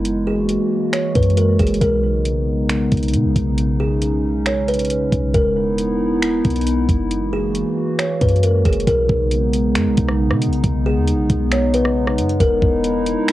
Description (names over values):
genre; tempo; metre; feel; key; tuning
hip hop, atmospheric cloud-rap; 136 BPM; 4/4; half-time; B major; A4 = 440 Hz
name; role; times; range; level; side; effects
warbly tape-like pad; sustained chords; 0.0-13.3 s; C#3 to F#4; -20 LUFS; equal; chorus, built-in reverb, sidechain pumping, cassette tape
clean 808-style bass; bass; 0.0-13.2 s; E1 to B2; -20 LUFS; equal; none
smooth R&B drum kit; drums; 0.1-13.3 s; finger snaps, hi-hat, kick drum, rim click; -22 LUFS; equal; none
kalimba; melody; 0.3-12.8 s; G#4 to C#5; -22 LUFS; left 1 dB; analog delay
room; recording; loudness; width
light reverb; home recording on cassette; -15 LUFS; side -15 dB against mid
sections
0.0-8.9 A section; 8.9-13.3 B section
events
none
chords
0.1 F#9; 1.8 B69; 5.3 Emaj7; 7.1 F#9; 8.9 B69; 12.4 Emaj7